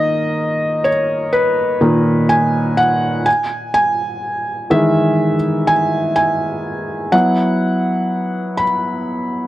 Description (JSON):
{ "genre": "pop", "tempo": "62 BPM", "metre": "4/4", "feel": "straight", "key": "B major", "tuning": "A4 = 437 Hz", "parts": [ { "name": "felt-muted upright piano", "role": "solo", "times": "0.0-9.5 s", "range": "A#2 to B5", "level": "-14 LUFS", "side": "equal", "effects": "none" } ], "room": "small room reverb", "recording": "dry, close 1970s-style studio recording", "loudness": "-14 LUFS", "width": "side -15 dB against mid", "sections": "0.0-9.5 A section", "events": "felt piano solo 0.0-9.5", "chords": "0.0 Bmaj7/D#; 3.3 Emaj7; 7.1 F#7sus4" }